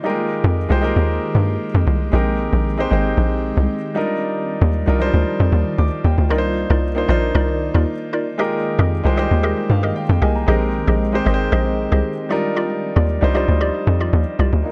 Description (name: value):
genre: amapiano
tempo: 115 BPM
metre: 4/4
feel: straight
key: unclear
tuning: A4 = 441 Hz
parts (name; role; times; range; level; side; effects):
- warm grand piano; accompaniment; 0.0-14.7 s; F3 to D6; -24 LUFS; equal; none
- ethereal airy pad; sustained chords; 0.0-14.7 s; Eb3 to G5; -31 LUFS; equal; ensemble chorus, built-in reverb
- tight log drum bass; bass; 0.4-14.6 s; Ab1 to G2; -19 LUFS; equal; none
- mallet-like synth pluck; stabs; 6.3-14.5 s; Eb4 to Eb5; -27 LUFS; equal; chorus, digital delay
room: little or no reverb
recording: none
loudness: -18 LUFS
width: mono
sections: 0.0-14.7 A section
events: drop 0.0-14.7; grand piano fill 5.5-6.3, 9.4-10.5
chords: 0.0 Fm11; 2.1 Bb13sus4; 4.0 Ebmaj9; 6.3 Cm11; 8.4 Fm11; 10.5 Bb13sus4; 12.3 Ebmaj9